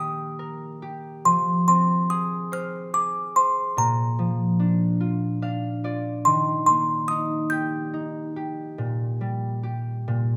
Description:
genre	children's music, lullaby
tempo	48 BPM (dotted quarters)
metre	6/8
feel	rubato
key	Eb major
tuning	A4 = 440 Hz
part	music box	melody	0.0-10.4 s	Bb5 to G6	-24 LUFS	equal	none
part	concert harp	accompaniment	0.0-10.4 s	Bb2 to F5	-28 LUFS	equal	none
room	moderate recital hall reverb, RT60 1.4 s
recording	none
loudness	-24 LUFS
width	mono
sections	0.0-1.2 A section; 1.2-10.4 B section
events	harp fill 5.0-6.3, 10.1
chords	0.0 Eb; 1.2 Fm; 3.8 Bb; 6.3 Eb; 8.8 Gm/Bb

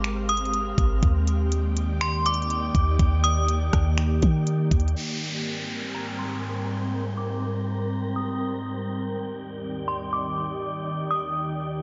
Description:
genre	hip hop, atmospheric cloud-rap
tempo	122 BPM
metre	4/4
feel	half-time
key	unclear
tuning	A4 = 438 Hz
part	ethereal airy pad	sustained chords	0.0-11.8 s	Eb2 to D5	-32 LUFS	equal	ensemble chorus, built-in reverb, sidechain pumping, low-pass filter
part	clean 808-style bass	bass	0.0-5.0 s	Ab1 to Eb3	-26 LUFS	equal	none
part	trap drum kit	drums	0.0-5.0 s	finger snaps, hi-hat, kick drum, rim click	-27 LUFS	equal	none
part	wind-like tuned noise texture	texture	0.0-11.8 s	C4 to Bb5	-41 LUFS	equal	built-in reverb
part	metallic FM bell	melody	0.3-11.3 s	Bb5 to Eb6	-31 LUFS	equal	chorus, low-pass filter, delay
part	downlifter	sound effects	5.0-8.9 s	none	-38 LUFS	equal	none
room	light reverb, digital ambience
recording	nothing above 7.5 kHz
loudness	-25 LUFS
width	mono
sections	0.0-5.0 A section; 5.0-11.8 B section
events	filter sweep 5.0-11.8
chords	0.0 Abmaj9; 1.0 Ebmaj7; 5.0 Abmaj9; 8.9 Ebmaj7

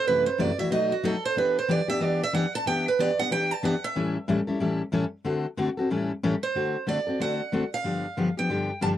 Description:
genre	jazz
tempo	185 BPM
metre	4/4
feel	swing 61% on 8ths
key	D mixolydian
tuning	A4 = 444 Hz
part	picked steel-string acoustic guitar	melody	0.0-4.1, 6.4-8.9 s	F#4 to A5	-26 LUFS	right 4 dB	slapback echo
part	picked steel-string acoustic guitar	accompaniment	0.1-8.9 s	F#2 to A4	-26 LUFS	left 2 dB	none
room	light reverb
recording	dry, close 1970s-style studio recording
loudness	-24 LUFS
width	side -11 dB against mid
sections	0.0-6.5 A section; 6.5-9.0 B section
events	steel-string acoustic guitar solo 0.0-6.5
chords	0.1 F#m7b5; 0.7 B7; 1.4 Em7; 4.0 A7; 5.2 D7; 5.9 A7; 6.5 D7; 7.8 G7

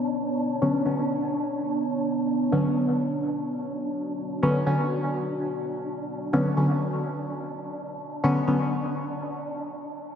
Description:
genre	techno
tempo	126 BPM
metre	4/4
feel	straight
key	B minor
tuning	A4 = 440 Hz
part	deep dark ambient pad	sustained chords	0.0-9.8 s	B3 to C#5	-29 LUFS	equal	chorus, built-in reverb
part	wind-like tuned noise texture	texture	0.0-9.8 s	D4	-33 LUFS	right 2 dB	built-in reverb
part	deep mellow chord stab	stabs	0.6-8.6 s	D3 to C#4	-26 LUFS	left 1 dB	chorus, phaser, dub echo
room	wet lush hall reverb, RT60 3.0 s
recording	dreamy mix soaked in reverb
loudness	-24 LUFS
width	side -8 dB against mid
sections	0.0-10.2 A section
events	break 9.8-10.2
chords	0.0 Bmadd9

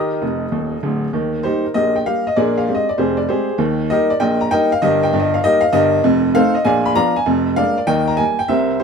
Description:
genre	jazz, stride piano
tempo	196 BPM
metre	4/4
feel	swing 61% on 8ths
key	Eb major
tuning	A4 = 440 Hz
part	clear upright piano	solo	0.0-8.8 s	D1 to Eb6	-14 LUFS	equal	none
room	moderate echo chamber reverb, RT60 1.5 s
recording	minimal, uncompressed stereo recording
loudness	-14 LUFS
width	side -6 dB against mid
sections	0.0-1.1 A section; 1.1-8.8 A section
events	upright piano fill 0.2-1.1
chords	0.0 Eb; 2.4 Bbsus2; 3.6 Eb; 4.8 Eb/G; 6.0 F7; 6.7 Bb; 7.3 Bb7/F; 7.9 Eb

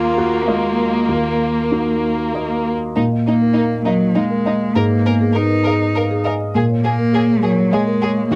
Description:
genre	neoclassical piano and strings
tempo	100 BPM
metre	3/4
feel	rubato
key	unclear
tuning	A4 = 440 Hz
part	rich chamber violin section	melody	0.0-8.4 s	Bb3 to Bb4	-24 LUFS	equal	none
part	rich cello	second line	0.0-8.4 s	Gb3 to F4	-22 LUFS	equal	none
part	felt-muted upright piano	accompaniment	0.0-8.4 s	Eb2 to F5	-21 LUFS	equal	none
part	marimba with soft mallets	arpeggios	3.0-8.4 s	Eb4 to Bb5	-28 LUFS	equal	slapback echo
room	light reverb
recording	dry, close 1970s-style studio recording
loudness	-17 LUFS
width	mono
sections	0.0-3.0 A section; 3.0-8.4 B section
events	none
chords	0.0 Bbsus4/Eb; 1.1 Ebm; 3.0 Bbsus4; 4.7 Abmadd9; 6.5 Bbm7

